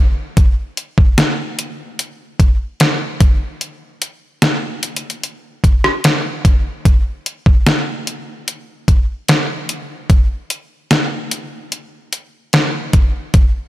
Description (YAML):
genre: R&B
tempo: 74 BPM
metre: 4/4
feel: straight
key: none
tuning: none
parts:
  - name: detuned 8-bit digital drum machine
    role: drums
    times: 0.4-13.5 s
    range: hi-hat, kick drum, rim click, snare drum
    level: -13 LUFS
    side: equal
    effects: overdrive
room: light reverb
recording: none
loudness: -14 LUFS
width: side -15 dB against mid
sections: 0.0-13.7 A section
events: none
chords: none